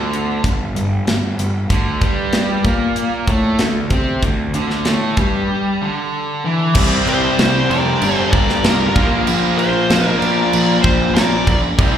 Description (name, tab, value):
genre	hard rock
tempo	95 BPM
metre	4/4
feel	straight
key	unclear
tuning	A4 = 440 Hz
part	crunchy overdriven guitar	riff	0.0-12.0 s	G2 to C4	-22 LUFS	left 7 dB	spring reverb, slapback echo
part	overdriven electric guitar	riff	0.0-12.0 s	G2 to C4	-22 LUFS	right 8 dB	slapback echo
part	fuzz picked electric bass	bass	0.0-12.0 s	F1 to C3	-20 LUFS	equal	overdrive
part	tight metal drum kit	drums	0.1-11.9 s	crash cymbal, hi-hat, kick drum, snare drum	-19 LUFS	equal	none
part	cranked stack guitar	riff	6.7-12.0 s	G2 to C4	-22 LUFS	equal	overdrive, slapback echo
part	nasal lead guitar with a parked wah	melody	7.1-11.6 s	Bb4 to D5	-20 LUFS	left 1 dB	overdrive, slapback echo
part	octave-fuzz lead guitar	second line	7.1-11.6 s	F4 to Bb4	-25 LUFS	right 1 dB	distortion, plate reverb, slapback echo
room	light reverb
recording	live gig heard through the venue's PA, recital hall reverb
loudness	-14 LUFS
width	side -9 dB against mid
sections	0.0-6.8 A section; 6.8-12.0 B section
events	none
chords	0.0 G5; 1.7 D5; 6.8 C5; 8.0 G5; 9.0 Bb